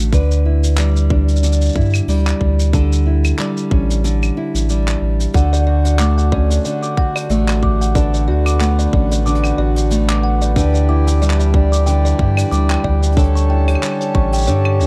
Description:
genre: folktronica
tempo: 92 BPM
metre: 4/4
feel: swing 56% on 16ths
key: D major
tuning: A4 = 440 Hz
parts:
  - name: nylon-string guitar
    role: arpeggios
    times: 0.0-14.9 s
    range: D3 to B4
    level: -23 LUFS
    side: equal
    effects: digital delay
  - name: warm sub bass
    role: bass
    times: 0.0-14.9 s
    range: A1 to G2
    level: -17 LUFS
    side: equal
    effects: none
  - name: electronic kick drum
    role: drums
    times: 0.1-14.3 s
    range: none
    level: -18 LUFS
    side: equal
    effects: none
  - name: soft brush drum kit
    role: drums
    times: 0.1-14.9 s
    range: claves, handclaps, hi-hat, shaker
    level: -28 LUFS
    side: equal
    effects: none
  - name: kalimba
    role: second line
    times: 5.3-14.9 s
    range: C#4 to D6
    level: -25 LUFS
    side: equal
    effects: digital delay
  - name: pedal harmonium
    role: sustained chords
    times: 5.3-14.9 s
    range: D3 to A4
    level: -28 LUFS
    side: equal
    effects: none
room: small room ambience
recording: dark, warm production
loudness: -16 LUFS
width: mono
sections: 0.0-14.9 A section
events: none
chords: 0.1 Em7/D; 2.7 A7; 5.3 Dmaj7; 10.6 Em7/D; 13.2 A7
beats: | 0.12 0.78 1.43 2.08 | 2.73 3.39 4.04 4.69 | 5.34 6.00 6.65 7.30 | 7.95 8.60 9.26 9.91 | 10.56 11.21 11.86 12.52 | 13.17 13.82 14.47

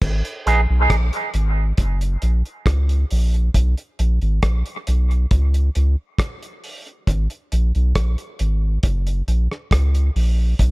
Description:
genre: dub reggae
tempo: 68 BPM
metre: 4/4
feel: straight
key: G# minor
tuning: A4 = 442 Hz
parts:
  - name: soft dub sub bass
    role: bass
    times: 0.0-10.7 s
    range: F#1 to C#2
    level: -17 LUFS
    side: equal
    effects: none
  - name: cloth-damped thuddy drum kit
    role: drums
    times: 0.0-10.7 s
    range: crash cymbal, hi-hat, kick drum, rim click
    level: -22 LUFS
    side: equal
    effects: none
  - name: electric guitar with an envelope filter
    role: accompaniment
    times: 0.5-0.6 s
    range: G#3 to G#4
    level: -22 LUFS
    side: right 4 dB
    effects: high-pass filter, dub echo
room: little or no reverb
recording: echo-heavy mix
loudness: -17 LUFS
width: side -21 dB against mid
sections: 0.0-10.7 A section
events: break 0.0-10.7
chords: 0.0 G#m; 1.8 F#; 3.5 G#madd9; 5.3 N.C.; 7.1 G#m; 8.8 F#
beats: | 0.02 0.90 1.78 2.66 | 3.54 4.42 5.31 6.19 | 7.07 7.95 8.83 9.71 | 10.60

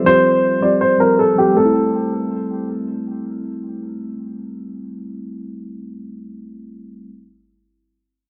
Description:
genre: hip hop, trap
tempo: 160 BPM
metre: 4/4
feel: half-time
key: A minor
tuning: A4 = 438 Hz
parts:
  - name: muted felt-like synth keys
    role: accompaniment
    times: 0.0-7.1 s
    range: F3 to Bb4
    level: -24 LUFS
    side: equal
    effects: chorus, low-pass filter
  - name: dark baby grand piano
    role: melody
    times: 0.1-2.6 s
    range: G4 to D5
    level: -17 LUFS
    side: equal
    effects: low-pass filter, digital delay
room: wet plate reverb, RT60 2.2 s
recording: worn, warbling old tape, cassette tape, warbly pitch drift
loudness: -17 LUFS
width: mono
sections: 0.0-1.6 A section; 1.6-4.6 B section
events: filter sweep 0.0-1.6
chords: 0.0 Fsus2; 1.6 Am7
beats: | 0.06 0.44 0.81 1.19 | 1.56 1.94 2.31 2.69 | 3.06 3.44 3.81 4.19

